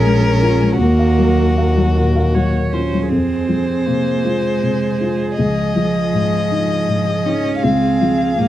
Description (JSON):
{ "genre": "neoclassical piano and strings", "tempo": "53 BPM (dotted quarters)", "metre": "6/8", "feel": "rubato", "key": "unclear", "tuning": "A4 = 440 Hz", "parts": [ { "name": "warm violin", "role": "melody", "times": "0.0-8.5 s", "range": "Gb4 to F5", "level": "-21 LUFS", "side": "left 4 dB", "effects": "slapback echo" }, { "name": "warm cello", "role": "second line", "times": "0.0-8.5 s", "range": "F3 to Db4", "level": "-20 LUFS", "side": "right 6 dB", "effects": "none" }, { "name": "felt-muted upright piano", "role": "accompaniment", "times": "0.0-8.5 s", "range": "Db2 to F5", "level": "-19 LUFS", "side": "left 3 dB", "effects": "none" }, { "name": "warm viola", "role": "accompaniment", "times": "0.0-8.5 s", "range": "Ab4 to Db5", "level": "-27 LUFS", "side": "right 4 dB", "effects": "none" }, { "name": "dark double bass", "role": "bass", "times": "0.0-3.1 s", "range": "Bb1 to Eb2", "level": "-17 LUFS", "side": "equal", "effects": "none" } ], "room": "little or no reverb", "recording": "dry, close 1970s-style studio recording", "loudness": "-14 LUFS", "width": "side -13 dB against mid", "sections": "0.0-3.1 A section; 3.1-8.5 B section", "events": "none", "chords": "0.0 Bbm7; 0.8 Ebmadd9; 3.1 Fm; 5.4 Dbadd9; 7.6 Db" }